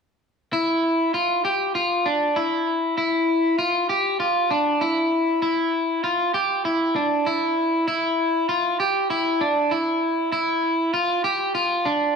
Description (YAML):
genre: dream pop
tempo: 98 BPM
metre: 4/4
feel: straight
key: unclear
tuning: A4 = 440 Hz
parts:
  - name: electric guitar at the edge of break-up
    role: solo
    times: 0.5-12.2 s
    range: D4 to G4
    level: -20 LUFS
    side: equal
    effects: wide subtle chorus, tape echo
room: wet recital hall reverb, RT60 1.3 s, digital ambience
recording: none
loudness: -20 LUFS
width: side -5 dB against mid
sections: 0.5-10.3 A section; 10.3-12.2 B section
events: none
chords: none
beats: | 0.53 1.14 1.76 2.37 | 2.98 3.59 4.21 4.82 | 5.43 6.04 6.65 7.27 | 7.88 8.49 9.10 9.71 | 10.33 10.94 11.55